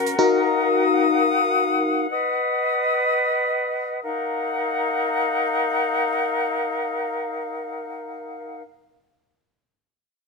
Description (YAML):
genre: pop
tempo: free time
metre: none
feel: none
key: Eb minor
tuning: A4 = 440 Hz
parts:
  - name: FM electric piano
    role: accompaniment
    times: 0.0-2.1 s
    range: Db4 to Bb4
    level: -20 LUFS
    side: left 4 dB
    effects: chorus, phaser
  - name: small flute group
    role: sustained chords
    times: 0.0-8.6 s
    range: Db4 to D#6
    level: -21 LUFS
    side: left 2 dB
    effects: none
room: moderate plate reverb, RT60 1.3 s, small room ambience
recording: none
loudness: -20 LUFS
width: side -3 dB against mid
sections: 0.0-4.0 A section; 4.0-7.9 B section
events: none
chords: 0.2 Ebmadd9; 2.1 B; 4.0 Ebmadd9